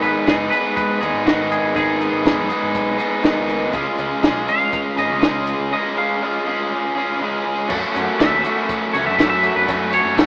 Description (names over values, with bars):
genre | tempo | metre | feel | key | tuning
indie rock | 121 BPM | 4/4 | straight | F# dorian | A4 = 440 Hz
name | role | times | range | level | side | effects
twangy electric guitar | melody | 0.0-10.2 s | F#4 to E#5 | -24 LUFS | equal | analog chorus, digital delay
raw garage guitar | riff | 0.0-10.3 s | G#2 to G#4 | -22 LUFS | equal | overdrive
overdriven picked electric bass | bass | 0.0-10.3 s | F#1 to F#2 | -34 LUFS | equal | none
compact cocktail drum kit | drums | 0.0-10.3 s | crash cymbal, hi-hat, kick drum, snare drum | -22 LUFS | equal | none
raw garage guitar | riff | 8.0-10.3 s | F#3 to F#4 | -29 LUFS | equal | overdrive, ensemble chorus
room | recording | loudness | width
little or no reverb | rough home demo mix, AM radio sound | -19 LUFS | mono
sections
0.0-7.7 A section; 7.7-10.3 B section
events
clean electric guitar solo 7.7-10.3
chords
0.0 G#m; 3.7 C#add9; 7.7 F#m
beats
0.27 0.77 1.26 | 1.76 2.25 2.75 3.25 | 3.74 4.24 4.73 5.23 | 5.72 6.22 6.72 7.21 | 7.71 8.20 8.69 9.19 | 9.68 10.18